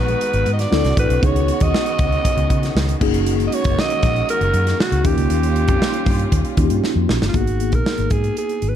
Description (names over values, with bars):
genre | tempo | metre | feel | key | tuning
polished 1980s jazz-funk pop | 118 BPM | 4/4 | straight | G# dorian | A4 = 440 Hz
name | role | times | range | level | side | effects
breathy alto saxophone | melody | 0.0-8.8 s | E#4 to D#5 | -22 LUFS | right 2 dB | none
mellow tine electric piano | accompaniment | 0.0-8.8 s | A#3 to A#5 | -23 LUFS | left 2 dB | medium stereo tremolo, wide subtle chorus
warm studio string section | sustained chords | 0.0-7.3 s | D#3 to F#4 | -29 LUFS | left 1 dB | none
vintage muted fingered electric bass | bass | 0.0-8.8 s | F#1 to C#3 | -20 LUFS | equal | none
modern studio drum kit | drums | 0.1-8.7 s | crash cymbal, hi-hat, kick drum, snare drum | -21 LUFS | equal | none
room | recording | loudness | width
light reverb, small room reverb | dark, warm production | -16 LUFS | side -10 dB against mid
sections
0.0-7.3 A section; 7.3-8.8 B section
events
drum fill 6.8-7.3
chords
0.0 G#m7; 0.7 D9; 1.2 C#9sus4; 3.0 F#69; 5.0 D#9; 7.3 G#m9